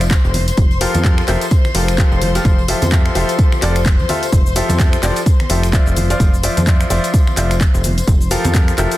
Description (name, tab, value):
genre	piano house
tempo	128 BPM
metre	4/4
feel	swing 58% on 16ths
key	F major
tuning	A4 = 439 Hz
part	rich chamber violin section	sustained chords	0.0-9.0 s	C5 to C6	-25 LUFS	left 5 dB	sidechain pumping
part	bright concert grand piano	riff	0.0-8.9 s	F3 to F5	-20 LUFS	left 1 dB	sidechain pumping, tape echo
part	plucky analog bass	bass	0.0-8.9 s	F1 to F2	-18 LUFS	equal	sidechain pumping
part	house drum kit	drums	0.0-9.0 s	finger snaps, handclaps, hi-hat, shaker	-23 LUFS	left 1 dB	none
part	tambourine and congas	percussion	0.0-9.0 s	none	-27 LUFS	equal	none
part	electronic kick drum	drums	0.1-8.7 s	none	-13 LUFS	equal	overdrive
room	studio reverb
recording	dense, heavily limited modern master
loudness	-12 LUFS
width	side -16 dB against mid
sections	0.0-9.0 A section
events	none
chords	0.3 Gm9/F; 2.5 Fmaj9; 6.0 Dm9/F; 7.8 Gm9/F